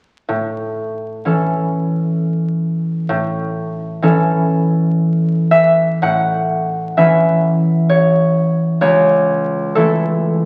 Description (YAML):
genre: classical, solo harp piece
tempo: 64 BPM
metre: 3/4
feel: rubato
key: A major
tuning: A4 = 440 Hz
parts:
  - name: concert harp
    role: solo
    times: 0.3-10.5 s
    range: C#2 to F#5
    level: -16 LUFS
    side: equal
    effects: none
room: moderate recital hall reverb, RT60 1.4 s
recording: very old 78 rpm record, vinyl crackle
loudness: -16 LUFS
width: mono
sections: 0.3-6.0 A section; 6.0-10.5 B section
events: none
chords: 0.3 A; 8.8 A/C#